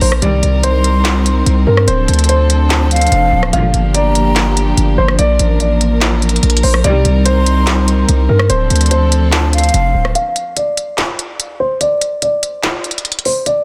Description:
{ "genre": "hip hop, trap", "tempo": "145 BPM", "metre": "4/4", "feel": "half-time", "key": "unclear", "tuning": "A4 = 441 Hz", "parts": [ { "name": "dark concert grand piano", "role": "melody", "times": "0.0-13.6 s", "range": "Bb4 to F5", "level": "-20 LUFS", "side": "equal", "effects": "low-pass filter, delay" }, { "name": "dark chamber string section", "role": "sustained chords", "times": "0.0-10.1 s", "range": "F3 to Bb4", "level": "-21 LUFS", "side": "equal", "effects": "none" }, { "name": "distorted 808-style bass", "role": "bass", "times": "0.0-10.1 s", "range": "D1 to G2", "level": "-15 LUFS", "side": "equal", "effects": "distortion" }, { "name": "industrial drum kit", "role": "drums", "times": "0.0-13.6 s", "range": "handclaps, hi-hat, rim click, snare drum", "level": "-20 LUFS", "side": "equal", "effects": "none" }, { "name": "dark symphonic string section", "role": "stabs", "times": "0.2-0.6, 3.5-3.9, 6.8-7.2 s", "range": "Bb2 to G3", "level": "-22 LUFS", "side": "equal", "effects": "none" }, { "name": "breathy concert flute", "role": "second line", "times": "0.6-4.7, 7.3-10.1 s", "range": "F5 to C6", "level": "-22 LUFS", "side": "equal", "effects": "delay" } ], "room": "light reverb, small room ambience", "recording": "dense, heavily limited modern master", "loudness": "-13 LUFS", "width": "mono", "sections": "0.0-10.2 A section; 10.2-13.6 B section", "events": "break 10.2-13.6", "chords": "0.2 Cm7; 1.9 Dm7; 3.5 Gm7; 5.2 Bb; 6.8 Cm7; 8.5 Dm7; 10.2 N.C." }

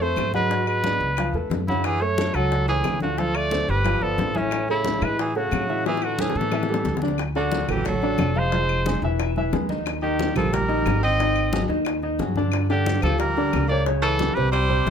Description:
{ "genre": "Afro-Cuban jazz", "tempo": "180 BPM", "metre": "4/4", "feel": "straight", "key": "A major", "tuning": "A4 = 436 Hz", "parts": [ { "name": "clear trumpet", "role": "melody", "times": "0.0-14.9 s", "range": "C#4 to Eb5", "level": "-25 LUFS", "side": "equal", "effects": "none" }, { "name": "breathy tenor saxophone", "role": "second line", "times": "0.0-14.9 s", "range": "A2 to C4", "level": "-30 LUFS", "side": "right 5 dB", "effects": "none" }, { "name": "warm baby grand piano", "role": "accompaniment", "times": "0.0-14.9 s", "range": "C3 to F#5", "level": "-26 LUFS", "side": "left 1 dB", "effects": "none" }, { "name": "upright bass", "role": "bass", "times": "0.0-14.9 s", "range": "E1 to A2", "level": "-26 LUFS", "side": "equal", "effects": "none" }, { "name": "bongos", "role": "percussion", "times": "0.0-14.9 s", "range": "none", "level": "-31 LUFS", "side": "left 6 dB", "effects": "none" }, { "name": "congas", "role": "percussion", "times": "0.0-14.9 s", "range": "none", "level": "-31 LUFS", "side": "left 1 dB", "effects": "none" }, { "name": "claves", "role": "percussion", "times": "0.2-14.7 s", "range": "none", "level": "-35 LUFS", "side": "left 7 dB", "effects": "none" } ], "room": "light reverb", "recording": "close, detailed microphones", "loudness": "-20 LUFS", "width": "side -7 dB against mid", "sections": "0.0-7.2 A section; 7.2-14.9 B section", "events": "drum fill 5.9-7.2", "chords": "0.0 Bbmaj7sus2 (rootless); 0.5 G#m7b5; 1.2 C#7alt; 1.8 F#m9; 3.2 Dm7; 3.9 G9; 4.5 A6; 6.5 A5; 7.2 D; 8.5 Fm; 9.2 E; 9.9 Eb; 11.2 G#7; 12.5 Gm7; 13.9 C#dim" }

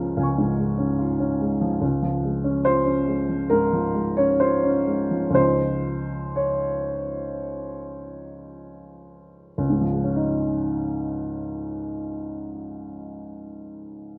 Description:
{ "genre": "neoclassical minimalist piano", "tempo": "53-74 BPM", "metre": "4/4", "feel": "rubato", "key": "Db major", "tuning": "A4 = 440 Hz", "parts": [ { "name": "dark upright piano", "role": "solo", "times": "0.0-14.2 s", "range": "Db2 to Db6", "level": "-25 LUFS", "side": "equal", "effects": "none" } ], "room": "light reverb", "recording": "none", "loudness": "-24 LUFS", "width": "mono", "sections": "0.0-9.6 A section; 9.6-13.9 B section", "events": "slowing down 0.2-9.6", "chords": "0.0 Db; 5.4 Dbadd9" }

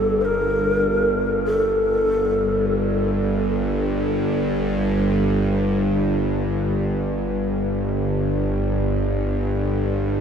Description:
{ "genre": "dark ambient drone", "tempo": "free time", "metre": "none", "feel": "none", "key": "G minor", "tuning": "A4 = 442 Hz", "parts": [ { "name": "breathy mellow long shakuhachi", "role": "melody", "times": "0.0-3.3 s", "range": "A4 to C5", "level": "-23 LUFS", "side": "left 1 dB", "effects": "diffuse ambient delay" }, { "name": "bowed-like drone", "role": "drone", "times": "0.0-10.2 s", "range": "G1 to G2", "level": "-20 LUFS", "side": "equal", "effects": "built-in reverb" } ], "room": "wet huge ambient reverb, RT60 9.0 s", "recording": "in a vast, echoing space", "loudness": "-19 LUFS", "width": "side -7 dB against mid", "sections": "0.0-10.2 A section", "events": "none", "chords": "none" }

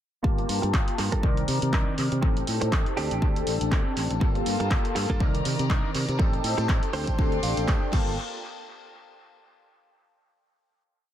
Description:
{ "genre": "filtered disco house", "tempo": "121 BPM", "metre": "4/4", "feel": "swing 56% on 16ths", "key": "G minor", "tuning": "A4 = 445 Hz", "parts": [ { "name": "funky polysynth comp", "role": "accompaniment", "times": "0.2-8.1 s", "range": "Eb3 to A5", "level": "-30 LUFS", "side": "left 1 dB", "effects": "chorus, phaser, sidechain pumping, low-pass filter, dub echo" }, { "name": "direct-recorded clean electric guitar", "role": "riff", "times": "0.2-8.2 s", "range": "Bb3 to G5", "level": "-35 LUFS", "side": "right 6 dB", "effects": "sidechain pumping, low-pass filter" }, { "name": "fingered electric bass", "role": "bass", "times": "0.2-8.2 s", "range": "G1 to C3", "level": "-29 LUFS", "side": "equal", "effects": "sidechain pumping, low-pass filter" }, { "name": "electronic kick drum", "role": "drums", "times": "0.2-8.0 s", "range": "none", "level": "-25 LUFS", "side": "equal", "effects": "none" }, { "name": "tambourine", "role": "percussion", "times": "0.2-8.2 s", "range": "none", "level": "-46 LUFS", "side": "right 3 dB", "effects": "none" }, { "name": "punchy analog drum machine", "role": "drums", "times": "0.4-8.0 s", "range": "crash cymbal, handclaps, hi-hat", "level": "-33 LUFS", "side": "equal", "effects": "sidechain pumping on hats, sidechain pumping on cymbals, dub echo" }, { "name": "rich chamber string section", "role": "sustained chords", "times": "4.2-8.2 s", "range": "Eb3 to C6", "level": "-36 LUFS", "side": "left 2 dB", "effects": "sidechain pumping, low-pass filter" } ], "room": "light reverb, digital ambience", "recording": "echo-heavy mix", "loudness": "-23 LUFS", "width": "side -11 dB against mid", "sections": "0.2-8.2 groove; 8.2-10.2 final hit", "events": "filter sweep 0.2-8.2; clean electric guitar fill 7.2-8.2", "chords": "0.2 Gm9; 1.2 Cm9; 2.2 Am7b5; 3.0 D7sus4; 4.2 Gm9; 5.2 Cm9; 6.2 Am7b5; 6.9 D7sus4; 7.9 Gm9; 8.2 N.C." }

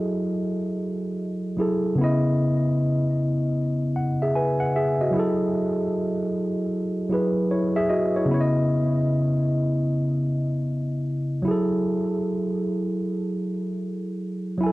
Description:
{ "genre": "hip hop", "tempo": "76 BPM", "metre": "4/4", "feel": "swing 64% on 16ths", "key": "F# dorian", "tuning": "A4 = 440 Hz", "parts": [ { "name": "barky tine electric piano", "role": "solo", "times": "0.0-14.7 s", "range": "C#3 to G#5", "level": "-22 LUFS", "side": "equal", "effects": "overdrive, cassette tape, low-pass filter, analog delay" } ], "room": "moderate small room ambience, RT60 0.5 s", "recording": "cassette tape", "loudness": "-22 LUFS", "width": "side -19 dB against mid", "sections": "0.0-14.7 A section", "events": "none", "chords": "0.0 F#m9; 2.0 C#m9; 5.1 F#m9; 8.3 C#m9; 11.5 F#m9" }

